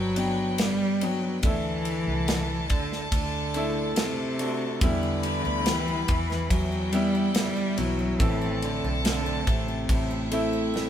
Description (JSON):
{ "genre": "pop ballad", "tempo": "71 BPM", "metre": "4/4", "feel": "straight", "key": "unclear", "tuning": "A4 = 440 Hz", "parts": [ { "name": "warm cello", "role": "melody", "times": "0.0-10.7 s", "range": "C3 to G3", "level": "-29 LUFS", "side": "equal", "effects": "none" }, { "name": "warm studio violin section", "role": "second line", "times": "0.0-10.9 s", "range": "E4 to B5", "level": "-34 LUFS", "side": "left 1 dB", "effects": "none" }, { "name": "clear grand piano", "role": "accompaniment", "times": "0.0-10.9 s", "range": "G2 to G5", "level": "-30 LUFS", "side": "left 1 dB", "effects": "none" }, { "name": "vintage muted fingered electric bass", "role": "bass", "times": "0.0-10.9 s", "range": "G1 to E2", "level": "-32 LUFS", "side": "equal", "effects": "none" }, { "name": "modern studio drum kit", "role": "drums", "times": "0.2-10.9 s", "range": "kick drum, ride cymbal, snare drum", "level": "-29 LUFS", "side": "equal", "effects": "none" }, { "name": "picked steel-string acoustic guitar", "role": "arpeggios", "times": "4.8-10.9 s", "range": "E2 to E4", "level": "-36 LUFS", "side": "right 2 dB", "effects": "none" } ], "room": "light reverb", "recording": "band playing live in one room", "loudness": "-24 LUFS", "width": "side -10 dB against mid", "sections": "0.0-10.9 A section", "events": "drum fill 10.7", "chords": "0.0 G; 1.4 Dsus2; 4.8 Em; 8.2 Am" }